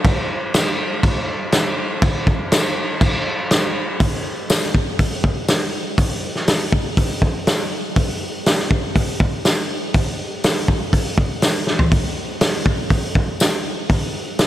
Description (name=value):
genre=rock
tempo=121 BPM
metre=4/4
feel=straight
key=none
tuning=none
part: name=loose indie drum kit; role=drums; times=0.0-14.5 s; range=crash cymbal, hi-hat, kick drum, snare drum, toms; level=-17 LUFS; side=equal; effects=none
part: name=tambourine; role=percussion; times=0.6-14.5 s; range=none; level=-32 LUFS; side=left 7 dB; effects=none
room=moderate huge ambient reverb, RT60 8.6 s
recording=dreamy mix soaked in reverb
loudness=-17 LUFS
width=side -13 dB against mid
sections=0.0-4.0 A section; 4.0-14.5 B section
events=drum fill 11.7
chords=none